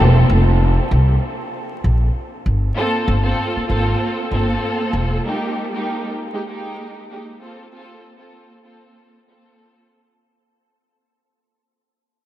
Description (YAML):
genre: hip hop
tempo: 97 BPM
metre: 4/4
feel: swing 56% on 16ths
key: unclear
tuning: A4 = 441 Hz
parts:
  - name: dark studio string section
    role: accompaniment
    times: 0.0-10.1 s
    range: Ab3 to A4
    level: -22 LUFS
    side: equal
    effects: cassette tape, high-pass filter, low-pass filter
  - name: upright bass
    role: bass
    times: 0.0-5.2 s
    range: E1 to C2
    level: -15 LUFS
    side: equal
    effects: none
room: moderate huge ambient reverb, RT60 9.1 s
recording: dreamy mix soaked in reverb, vinyl crackle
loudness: -16 LUFS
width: side -13 dB against mid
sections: 0.3-10.2 A section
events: break 0.3-2.8; fade-out 0.3-10.2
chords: 0.3 Fsus4; 2.5 Gm11; 5.2 Ebadd11/Ab; 7.4 Fadd11/Bb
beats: | 0.29 0.91 1.52 2.14 | 2.76 3.38 4.00 4.62 | 5.24 5.86 6.47 7.09 | 7.71 8.33 8.95 9.57